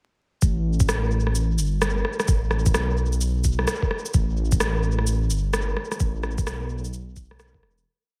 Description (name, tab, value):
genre	future garage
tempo	129 BPM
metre	4/4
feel	swing 63% on 16ths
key	unclear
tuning	A4 = 440 Hz
part	dark detuned saw bass	bass	0.4-7.9 s	E1 to B1	-26 LUFS	equal	sidechain pumping
part	electronic kick drum	drums	0.4-7.6 s	none	-24 LUFS	equal	none
part	electronic shaker and rim click	drums	0.4-7.8 s	none	-30 LUFS	equal	none
room	little or no reverb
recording	echo-heavy mix, vinyl crackle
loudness	-24 LUFS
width	mono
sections	0.4-7.9 groove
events	fade-out 5.4-7.9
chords	none